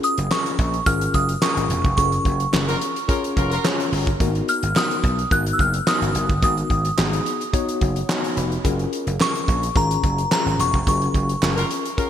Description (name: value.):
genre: early-eighties boogie funk.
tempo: 108 BPM.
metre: 4/4.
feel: straight.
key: unclear.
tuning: A4 = 440 Hz.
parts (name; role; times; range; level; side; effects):
glassy synth bell; melody; 0.0-12.1 s; A#5 to F#6; -23 LUFS; right 1 dB; chorus.
mellow tine electric piano; accompaniment; 0.0-12.1 s; A#3 to B5; -26 LUFS; left 4 dB; medium stereo tremolo.
damped 70s drum kit; drums; 0.0-12.1 s; handclaps, hi-hat, kick drum, snare drum; -23 LUFS; equal; gated reverb.
vintage slap bass; bass; 0.2-11.6 s; E1 to B1; -23 LUFS; right 1 dB; none.
group handclap; percussion; 0.3-11.6 s; none; -34 LUFS; right 5 dB; none.
clear horn section; second line; 2.7-3.9, 11.6-12.1 s; F#3 to A#4; -28 LUFS; equal; digital delay.
room: moderate lush hall reverb, RT60 2.9 s.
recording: bright 1980s-style digital production.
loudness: -18 LUFS.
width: side -10 dB against mid.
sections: 0.0-12.1 A section.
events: band accent 2.0-4.2, 10.9-12.1; tine electric piano fill 7.5-8.6.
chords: 0.0 F#maj7; 4.2 G#m7; 8.6 F#maj7.